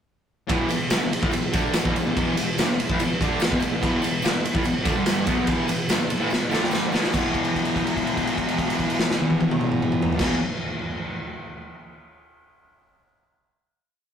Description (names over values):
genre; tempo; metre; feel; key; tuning
garage rock duo or trio; 145 BPM; 4/4; straight; E minor; A4 = 440 Hz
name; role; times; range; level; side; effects
fuzz guitar; riff; 0.5-10.4 s; E2 to D4; -24 LUFS; left 1 dB; distortion
raw garage drum kit; drums; 0.5-10.3 s; crash cymbal, kick drum, ride cymbal, snare drum, toms; -23 LUFS; equal; none
tambourine; percussion; 0.5-7.3 s; none; -41 LUFS; left 4 dB; none
room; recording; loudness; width
moderate small room reverb, RT60 0.6 s; rough rehearsal-room recording, tube saturation; -20 LUFS; side -8 dB against mid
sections
0.5-7.1 riff; 7.1-10.4 final chord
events
drum fill 6.3-7.1; held note 7.1-10.2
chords
0.5 Em; 7.1 E5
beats
| 0.49 0.91 1.32 1.74 | 2.16 2.57 2.99 3.40 | 3.82 4.23 4.65 5.06 | 5.47 5.89 6.30 6.71 | 7.13 7.54 7.95 8.36 | 8.78 9.19 9.60 10.02